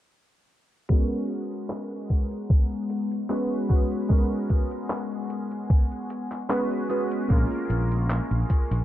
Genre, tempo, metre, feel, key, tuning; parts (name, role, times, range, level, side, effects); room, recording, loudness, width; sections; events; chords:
vaporwave; 75 BPM; 4/4; swing 54% on 16ths; G# dorian; A4 = 439 Hz
clear electric grand piano; accompaniment; 0.9-8.8 s; G#3 to B4; -29 LUFS; right 1 dB; analog chorus, vintage 12-bit sampler grit, analog delay
warbly tape-like pad; sustained chords; 1.9-8.8 s; G#3 to C#6; -33 LUFS; left 3 dB; chorus, built-in reverb
detuned 8-bit digital drum machine; drums; 0.9-8.8 s; handclaps, hi-hat; -35 LUFS; equal
electronic kick drum; drums; 0.9-8.7 s; -21 LUFS; equal; overdrive
fretless electric bass; bass; 7.3-8.8 s; A#1; -24 LUFS; equal; tube saturation
digital ambience; dark, warm production, low-pass filter; -23 LUFS; side -13 dB against mid
0.9-8.8 A section
filter sweep 0.9-8.8
0.9 G#m11; 7.3 A#m7